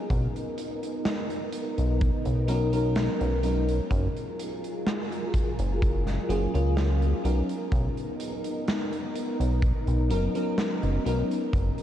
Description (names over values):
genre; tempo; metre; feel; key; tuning
vaporwave; 63 BPM; 4/4; straight; unclear; A4 = 439 Hz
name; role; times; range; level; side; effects
soft string machine; sustained chords; 0.0-11.8 s; F#3 to A#4; -32 LUFS; equal; ensemble chorus, vintage 12-bit sampler grit
chorused synth bass; bass; 0.1-11.7 s; F#1 to C#2; -25 LUFS; equal; tube saturation
big rock drum kit; drums; 0.1-11.8 s; hi-hat, snare drum; -34 LUFS; right 1 dB; none
kick drum; drums; 0.1-11.7 s; none; -28 LUFS; equal; none
FM electric piano with soft pad layer; accompaniment; 2.5-11.3 s; F#3 to A#4; -31 LUFS; left 1 dB; lush chorus, diffuse ambient delay
room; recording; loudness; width
moderate huge ambient reverb, RT60 6.9 s; dreamy mix soaked in reverb, cassette tape; -24 LUFS; side -11 dB against mid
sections
0.0-11.8 A section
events
none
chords
0.0 Bmaj9; 3.9 F#maj9; 7.2 Bmaj9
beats
| 0.10 1.05 2.01 2.96 | 3.91 4.86 5.82 6.77 | 7.72 8.67 9.63 10.58 | 11.53